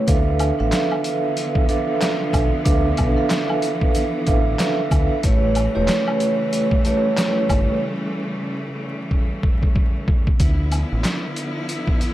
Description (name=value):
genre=hip hop, boom-bap hip-hop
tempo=93 BPM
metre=4/4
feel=swing 60% on 16ths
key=D dorian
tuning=A4 = 440 Hz
part: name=vibraphone with soft mallets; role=accompaniment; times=0.0-7.8 s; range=A3 to F5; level=-20 LUFS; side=right 2 dB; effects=none
part: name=rich studio string section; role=sustained chords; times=0.0-12.1 s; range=C#3 to E4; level=-27 LUFS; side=equal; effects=none
part: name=deep dub fingered electric bass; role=bass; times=0.1-11.0 s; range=E1 to D2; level=-22 LUFS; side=equal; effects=none
part: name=trip hop sampler-style drum kit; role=drums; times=0.1-12.1 s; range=handclaps, hi-hat, kick drum, snare drum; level=-20 LUFS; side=equal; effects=none
part: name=tube shaker and woodblock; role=percussion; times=0.1-12.1 s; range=none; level=-31 LUFS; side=left 2 dB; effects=none
room=small room ambience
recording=dry, gritty hardware recording, transformer saturation, vinyl crackle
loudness=-18 LUFS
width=side -14 dB against mid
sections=0.0-10.4 A section; 10.4-12.1 B section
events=break 7.8-10.4; drum fill 9.1-10.4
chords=0.1 Dm69; 5.2 A7; 10.4 Dm69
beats=| 0.08 0.72 1.37 2.01 | 2.66 3.30 3.95 4.59 | 5.24 5.88 6.53 7.17 | 7.82 8.46 9.11 9.76 | 10.40 11.05 11.69